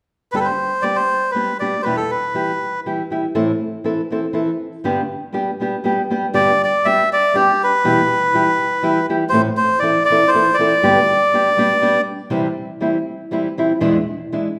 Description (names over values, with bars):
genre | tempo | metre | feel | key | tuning
mexican folk, mariachi | 120 BPM | 3/4 | straight | G major | A4 = 439 Hz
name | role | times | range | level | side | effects
melodica | melody | 0.3-2.8, 6.3-12.0 s | G4 to E5 | -18 LUFS | equal | none
nylon-string guitar | accompaniment | 0.3-14.5 s | E2 to A4 | -22 LUFS | equal | none
room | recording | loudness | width
wet recital hall reverb, RT60 1.4 s | none | -18 LUFS | mono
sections
0.3-6.3 A section; 6.3-14.6 B section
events
none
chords
0.3 G; 1.8 Em; 3.3 Am; 4.8 G; 7.8 Em; 9.3 Am; 10.8 G; 12.3 C; 13.8 E7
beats
| 0.33 0.84 1.34 | 1.84 2.34 2.84 | 3.34 3.84 4.34 | 4.84 5.34 5.84 | 6.35 6.85 7.34 | 7.84 8.33 8.83 | 9.32 9.82 10.31 | 10.81 11.30 11.80 | 12.31 12.81 13.30 | 13.80 14.29